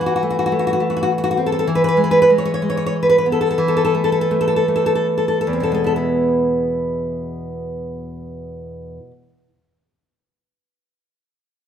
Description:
romantic piece for solo classical guitar; 61-105 BPM; 3/4; rubato; E major; A4 = 440 Hz
nylon-string guitar; solo; 0.0-9.5 s; E2 to C#5; -16 LUFS; equal; slapback echo
light reverb; close, detailed microphones; -15 LUFS; side -8 dB against mid
0.0-6.0 A section; 6.0-10.8 B section
slowing down 0.8-6.0
0.0 Am/E; 1.7 E; 3.6 Am/E; 6.0 E

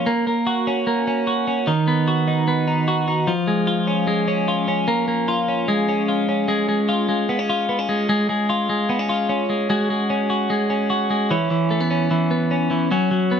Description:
indie pop; 150 BPM; 4/4; straight; A4 = 441 Hz
twelve-string electric guitar; solo; 0.0-13.4 s; D#3 to F#4; -18 LUFS; equal
moderate echo chamber reverb, RT60 1.8 s; -18 LUFS; side -7 dB against mid
0.0-6.5 A section; 6.5-9.7 B section; 9.7-13.4 C section
0.1 F#; 1.7 B; 3.3 C#; 4.9 A#m; 5.7 C#; 9.7 F#sus2; 11.3 Aadd9

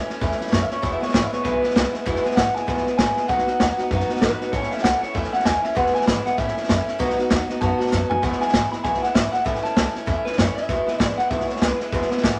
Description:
rockabilly; 195 BPM; 4/4; swing 59% on 8ths; E major; A4 = 440 Hz
picked acoustic archtop guitar; accompaniment; 0.0-12.4 s; E2 to F#4; -27 LUFS; equal
upright bass; bass; 0.0-12.4 s; E1 to F#2; -32 LUFS; equal
vintage drum kit; drums; 0.1-12.3 s; hi-hat, kick drum, snare drum, toms; -25 LUFS; equal
electric guitar through a small old amp; melody; 0.5-11.9 s; B4 to B5; -26 LUFS; equal
moderate studio reverb, RT60 0.8 s; -21 LUFS; mono
0.0-8.2 A section; 8.2-12.4 B section
drum fill 7.9-8.2; clean electric guitar solo 8.2-12.4
0.0 A; 0.8 E; 3.3 B; 4.5 A; 5.8 E; 6.4 A; 7.0 B; 8.2 E; 9.5 A; 10.7 E

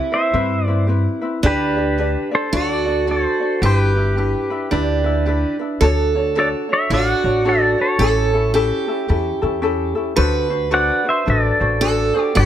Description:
Hawaiian; 110 BPM; 4/4; swing 61% on 8ths; G major, D major from 5.8 s; A4 = 440 Hz
picked steel-string acoustic guitar; second line; 0.0-12.5 s; D4 to B4; -21 LUFS; right 5 dB; digital delay
ukulele; accompaniment; 0.0-12.5 s; C4 to D5; -22 LUFS; left 4 dB
pedal steel guitar; melody; 0.1-12.5 s; G4 to F#5; -20 LUFS; equal
upright bass; bass; 0.3-12.5 s; G1 to G2; -20 LUFS; equal
light reverb, small room ambience; -16 LUFS; side -10 dB against mid
0.0-5.8 A section; 5.8-12.5 B section
0.0 Cmaj7; 1.4 G/D; 2.5 D; 3.6 G6; 5.8 Dmaj7; 8.0 A7; 10.2 D7

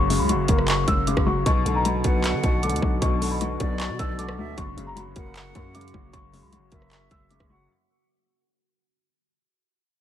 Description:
hip hop, trap; 154 BPM; 4/4; half-time; A4 = 441 Hz
celesta; melody; 0.0-7.7 s; A#5 to E6; -29 LUFS; left 2 dB; digital delay
felt-muted upright piano; accompaniment; 0.0-7.7 s; F#2 to B3; -28 LUFS; left 4 dB
warbly tape-like pad; sustained chords; 0.0-7.7 s; C#3 to F#4; -33 LUFS; right 3 dB; chorus, built-in reverb
growling 808-style bass; bass; 0.0-7.7 s; F#1 to D3; -28 LUFS; equal
trap drum kit; drums; 0.1-7.5 s; handclaps, hi-hat, kick drum, rim click; -25 LUFS; equal
breathy silver concert flute; second line; 2.0-7.7 s; D5 to F#5; -37 LUFS; right 4 dB; digital delay
small room ambience; -20 LUFS; side -10 dB against mid
0.0-7.7 A section
fade-out 0.0-7.7
0.0 F#; 1.5 Bmadd9; 4.6 F#

